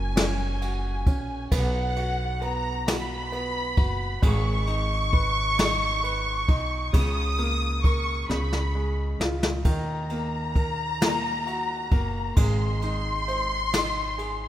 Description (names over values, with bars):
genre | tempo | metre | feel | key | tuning
six-eight pop ballad | 44 BPM (dotted quarters) | 6/8 | straight | unclear | A4 = 441 Hz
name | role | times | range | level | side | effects
warm studio violin section | second line | 0.0-14.5 s | F#5 to D#6 | -28 LUFS | left 1 dB | tape echo
clear baby grand piano | accompaniment | 0.0-14.5 s | C#3 to B#4 | -33 LUFS | right 2 dB | none
upright bass | bass | 0.0-14.5 s | F#1 to D#2 | -29 LUFS | equal | none
jazz brush drum kit | drums | 0.2-14.4 s | kick drum, ride cymbal, snare drum | -25 LUFS | equal | none
room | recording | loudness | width
light reverb, small room ambience | rough home demo mix | -23 LUFS | side -12 dB against mid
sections
0.0-14.5 A section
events
drum fill 8.3-9.7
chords
0.0 F#; 1.5 B5; 4.2 G#m; 6.9 A#madd11/C#; 8.3 C#; 9.7 D#m; 12.4 G#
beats
0.16 | 1.51 2.87 | 4.23 5.58 | 6.94 8.29 | 9.65 11.01 | 12.37 13.73